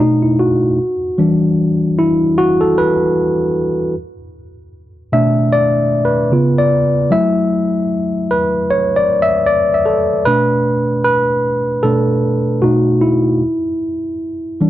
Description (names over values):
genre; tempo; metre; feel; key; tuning
R&B; 76 BPM; 4/4; swing 57% on 16ths; B minor; A4 = 436 Hz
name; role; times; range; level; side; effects
tine electric piano; solo; 0.0-14.7 s; B2 to E5; -12 LUFS; equal; none
room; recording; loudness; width
digital ambience; dry, close 1970s-style studio recording; -12 LUFS; side -13 dB against mid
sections
0.0-10.3 A section; 10.3-14.7 B section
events
tine electric piano solo 0.0-10.3, 10.3-14.7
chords
0.0 B7; 0.8 Em9; 3.9 Bm7; 6.3 C#7b9; 7.1 F#m7; 10.3 Bm7; 12.6 B7; 13.4 N.C.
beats
| 0.78 1.57 2.36 3.15 | 3.94 4.73 5.51 6.30 | 7.09 7.88 8.67 9.46 | 10.25 11.04 11.83 12.62 | 13.41 14.20